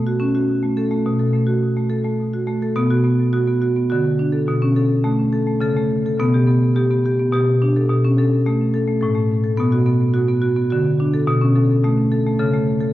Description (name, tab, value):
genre	world meditative, meditative tuned percussion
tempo	106 BPM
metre	3/4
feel	straight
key	B minor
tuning	A4 = 437 Hz
part	marimba with medium hard mallets	solo	0.0-12.9 s	A2 to A4	-16 LUFS	equal	tape echo
room	wet scoring stage reverb, RT60 1.6 s, studio ambience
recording	worn, warbling old tape, cassette tape, warbly pitch drift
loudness	-16 LUFS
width	side -15 dB against mid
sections	0.0-2.8 A section; 2.8-12.9 B section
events	none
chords	0.0 F#m; 2.8 Bm; 4.5 A/B; 6.2 G/B; 7.9 Asus2; 9.6 Bm; 11.3 A/B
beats	0.48 | 1.05 1.63 2.20 | 2.77 3.34 3.91 | 4.48 5.05 5.62 | 6.19 6.75 7.32 | 7.89 8.45 9.02 | 9.58 10.15 10.71 | 11.27 11.83 12.39